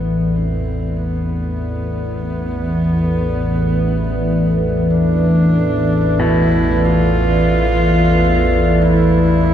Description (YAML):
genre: dark ambient drone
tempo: free time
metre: none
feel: none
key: unclear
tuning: A4 = 440 Hz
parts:
  - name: warm horsehead fiddle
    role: melody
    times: 0.0-9.5 s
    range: B3 to F4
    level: -22 LUFS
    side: equal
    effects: diffuse ambient delay
  - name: dark analog pad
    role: sustained chords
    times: 0.0-9.5 s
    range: A4 to E5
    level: -21 LUFS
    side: right 2 dB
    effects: lush chorus
  - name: analog drone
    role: drone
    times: 0.0-9.5 s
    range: A1 to E2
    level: -15 LUFS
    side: equal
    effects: chorus
  - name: bright concert grand piano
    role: arpeggios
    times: 6.2-9.5 s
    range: B2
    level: -25 LUFS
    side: equal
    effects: diffuse ambient delay
room: wet cathedral reverb, RT60 5.2 s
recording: none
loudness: -14 LUFS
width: side -9 dB against mid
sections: 0.0-9.5 A section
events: fade-in on horsehead fiddle 0.0-9.5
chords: 0.0 Asus2